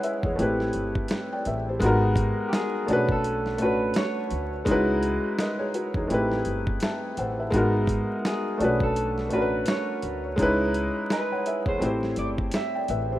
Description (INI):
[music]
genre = lo-fi hip hop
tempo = 84 BPM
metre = 4/4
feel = swing 60% on 16ths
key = unclear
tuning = A4 = 440 Hz
[part]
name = felt-muted upright piano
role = accompaniment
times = 0.0-13.2 s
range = G#3 to A5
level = -25 LUFS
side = equal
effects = cassette tape
[part]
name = dusty soul sampler-style drum kit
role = drums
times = 0.0-13.1 s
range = hi-hat, kick drum, snare drum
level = -30 LUFS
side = equal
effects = overdrive
[part]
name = upright bass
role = bass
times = 0.2-13.2 s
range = G1 to E2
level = -30 LUFS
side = equal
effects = none
[part]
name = electric guitar through a small old amp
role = melody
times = 2.5-13.2 s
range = F#4 to E5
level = -32 LUFS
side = right 1 dB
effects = analog delay
[sound]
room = light reverb, small room ambience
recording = rough home demo mix, vinyl crackle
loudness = -23 LUFS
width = side -14 dB against mid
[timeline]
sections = 0.0-13.2 A section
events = none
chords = 0.4 Am7; 1.8 G#m7; 2.9 Bm7; 4.7 C#m7; 6.1 Am7; 7.5 G#m7; 8.6 Bm7; 10.4 C#m7; 11.8 Am7